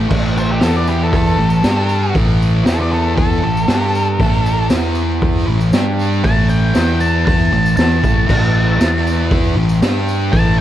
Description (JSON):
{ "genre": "garage rock duo or trio", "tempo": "117 BPM", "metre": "4/4", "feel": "straight", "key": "unclear", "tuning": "A4 = 443 Hz", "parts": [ { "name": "thick fuzz guitar", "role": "riff", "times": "0.0-10.6 s", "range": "A2 to G4", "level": "-17 LUFS", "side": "equal", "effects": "distortion" }, { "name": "fingered electric bass", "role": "bass", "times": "0.0-10.6 s", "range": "A1 to G2", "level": "-18 LUFS", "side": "equal", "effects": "none" }, { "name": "raw garage drum kit", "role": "drums", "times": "0.1-10.5 s", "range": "crash cymbal, hi-hat, kick drum, snare drum", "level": "-18 LUFS", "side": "equal", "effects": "none" }, { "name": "tambourine", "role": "percussion", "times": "0.1-10.4 s", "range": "none", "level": "-38 LUFS", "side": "left 3 dB", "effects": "none" }, { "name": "octave-fuzz lead guitar", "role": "melody", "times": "0.4-10.6 s", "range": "G4 to A5", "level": "-20 LUFS", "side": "equal", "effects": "distortion" } ], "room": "light reverb", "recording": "cassette tape", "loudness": "-12 LUFS", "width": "side -12 dB against mid", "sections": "0.1-10.6 A section", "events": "lead electric guitar solo 0.1-10.6", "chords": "0.1 A5; 0.6 E5; 1.4 A5; 1.6 G5; 2.2 A5; 2.7 E5; 3.4 A5; 3.7 G5; 4.2 A5; 4.7 E5; 5.5 A5; 5.7 G5; 6.3 A5; 6.8 E5; 7.5 A5; 8.8 E5; 9.6 A5; 9.8 G5" }